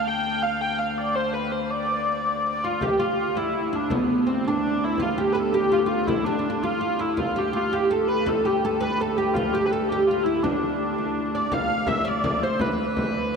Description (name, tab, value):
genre	medieval dance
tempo	110 BPM (dotted quarters)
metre	6/8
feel	straight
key	D dorian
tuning	A4 = 440 Hz
part	dark hurdy-gurdy	melody	0.0-13.4 s	B3 to G5	-24 LUFS	equal	none
part	rich viola da gamba	drone	0.0-13.4 s	D2	-30 LUFS	left 1 dB	stereo widening
part	oud	second line	2.6-13.3 s	B3 to F5	-26 LUFS	right 2 dB	none
part	frame drum	percussion	2.8-13.1 s	none	-32 LUFS	left 2 dB	none
room	wet cathedral reverb, RT60 6.7 s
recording	in a vast, echoing space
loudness	-21 LUFS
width	side -5 dB against mid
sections	0.0-2.8 A section; 2.8-11.5 A section; 11.5-13.4 B section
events	none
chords	none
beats	0.10 | 0.65 1.19 | 1.74 2.28 | 2.83 3.37 | 3.91 4.46 | 5.00 5.54 | 6.09 6.63 | 7.18 7.72 | 8.26 8.81 | 9.35 9.89 | 10.44 10.98 | 11.52 12.06 | 12.61 13.15